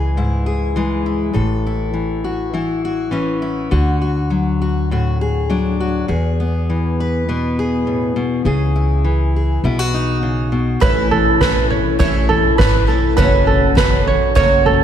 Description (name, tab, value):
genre	indie folk with a building arrangement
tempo	101 BPM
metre	4/4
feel	straight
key	unclear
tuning	A4 = 440 Hz
part	fingerpicked steel-string acoustic guitar	accompaniment	0.0-10.8 s	E2 to B4	-18 LUFS	left 2 dB	none
part	upright bass	bass	0.0-14.8 s	F#1 to E2	-20 LUFS	equal	none
part	picked twelve-string acoustic guitar	accompaniment	10.8-14.8 s	F#2 to F#4	-18 LUFS	left 2 dB	none
part	ukulele	arpeggios	10.8-14.8 s	A4 to C#5	-16 LUFS	right 5 dB	none
part	soft-mallet drum kit	drums	10.8-14.8 s	kick drum, snare drum, toms	-16 LUFS	right 1 dB	none
room	moderate lush hall reverb, RT60 2.5 s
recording	dreamy mix soaked in reverb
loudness	-14 LUFS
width	side -9 dB against mid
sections	0.0-10.8 A section; 10.8-14.8 B section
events	none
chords	0.0 C#m; 1.4 A; 3.7 D; 6.1 E; 8.5 C#m; 9.6 B; 10.8 A; 13.2 F#m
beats	0.17 0.77 | 1.36 1.95 2.54 3.13 | 3.73 4.32 4.91 5.50 | 6.09 6.68 7.28 7.87 | 8.46 9.05 9.64 10.23 | 10.82 11.42 12.01 12.60 | 13.19 13.78 14.37